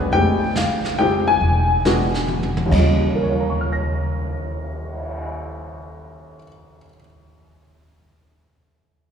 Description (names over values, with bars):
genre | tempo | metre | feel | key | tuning
jazz piano trio | 139 BPM | 3/4 | swing 68% on 8ths | Eb mixolydian | A4 = 441 Hz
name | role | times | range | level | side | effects
warm baby grand piano | melody | 0.0-7.1 s | Eb2 to Bb6 | -20 LUFS | left 2 dB | none
upright bass | bass | 0.0-6.4 s | E1 to Eb2 | -22 LUFS | equal | none
vintage brush drum kit | drums | 0.1-5.2 s | brushed snare drum, crash cymbal, cymbal swell, hi-hat, kick drum, snare drum, toms | -29 LUFS | right 1 dB | none
room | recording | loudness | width
wet cathedral reverb, RT60 4.3 s | recorded in a church or concert hall, small room ambience | -18 LUFS | side -7 dB against mid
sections
0.0-2.7 A section; 2.7-5.3 B section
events
drum fill 2.3-2.7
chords
0.1 Fm7; 1.4 E; 2.7 Eb9